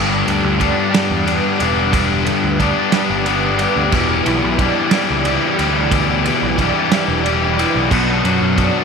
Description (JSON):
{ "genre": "indie rock", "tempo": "60 BPM (dotted quarters)", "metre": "6/8", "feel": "straight", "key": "unclear", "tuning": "A4 = 438 Hz", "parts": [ { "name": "biting overdriven guitar", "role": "riff", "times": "0.0-8.8 s", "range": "E2 to D4", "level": "-20 LUFS", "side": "right 12 dB", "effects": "analog chorus" }, { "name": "crunchy overdriven guitar", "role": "riff", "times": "0.0-8.8 s", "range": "E2 to G4", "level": "-17 LUFS", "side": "left 11 dB", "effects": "none" }, { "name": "growling picked electric bass", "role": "bass", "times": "0.0-8.7 s", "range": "E1 to F#2", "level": "-21 LUFS", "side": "right 1 dB", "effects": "overdrive" }, { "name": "loose indie drum kit", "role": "drums", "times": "0.3-8.7 s", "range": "crash cymbal, kick drum, ride cymbal, snare drum", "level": "-21 LUFS", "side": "right 4 dB", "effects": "none" } ], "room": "light reverb, small room ambience", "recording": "1960s-style stereo with parts hard left and right", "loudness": "-14 LUFS", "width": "side -5 dB against mid", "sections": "0.0-8.8 A section", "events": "none", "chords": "0.0 G; 3.9 Em7; 7.9 Bm" }